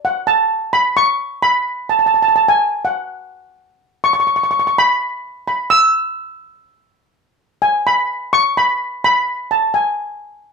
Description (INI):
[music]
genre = calypso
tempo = 127 BPM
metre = 4/4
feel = straight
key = unclear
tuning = A4 = 440 Hz
[part]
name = steel pan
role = solo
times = 0.0-10.5 s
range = F#5 to E6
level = -14 LUFS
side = equal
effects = none
[sound]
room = moderate studio reverb, RT60 0.5 s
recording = band playing live in one room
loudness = -14 LUFS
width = side -4 dB against mid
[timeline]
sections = 0.0-10.5 A section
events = none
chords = none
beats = | 0.25 0.73 1.20 1.68 | 2.15 2.62 3.10 3.57 | 4.04 4.51 4.99 5.46 | 5.93 6.41 6.88 7.36 | 7.83 8.30 8.78 9.25 | 9.72 10.20